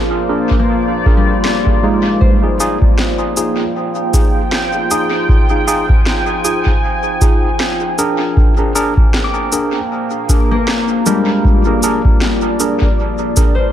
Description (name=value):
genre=ambient dub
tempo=78 BPM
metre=4/4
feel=swing 57% on 16ths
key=F dorian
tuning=A4 = 437 Hz
part: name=deep dark ambient pad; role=sustained chords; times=0.0-13.7 s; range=Bb3 to Ab5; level=-18 LUFS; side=equal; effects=chorus, built-in reverb
part: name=tine electric piano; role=stabs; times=0.3-13.5 s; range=Ab3 to Bb4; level=-18 LUFS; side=right 1 dB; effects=slow stereo tremolo, dub echo
part: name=electronic kick drum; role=drums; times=0.5-13.5 s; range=none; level=-13 LUFS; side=equal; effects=none
part: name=concert harp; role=arpeggios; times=0.6-4.2, 9.2-13.7 s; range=G3 to D6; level=-22 LUFS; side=left 6 dB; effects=dub echo
part: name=electronic snare drum and cabasa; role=drums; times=1.4-13.5 s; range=none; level=-23 LUFS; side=equal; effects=dub echo
room=light reverb, digital ambience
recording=echo-heavy mix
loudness=-12 LUFS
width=side -11 dB against mid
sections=0.0-13.7 A section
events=none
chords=0.0 Fm7; 8.4 Bb7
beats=0.68 1.45 | 2.21 2.98 3.75 4.52 | 5.29 6.06 6.83 7.60 | 8.37 9.14 9.91 10.68 | 11.45 12.21 12.98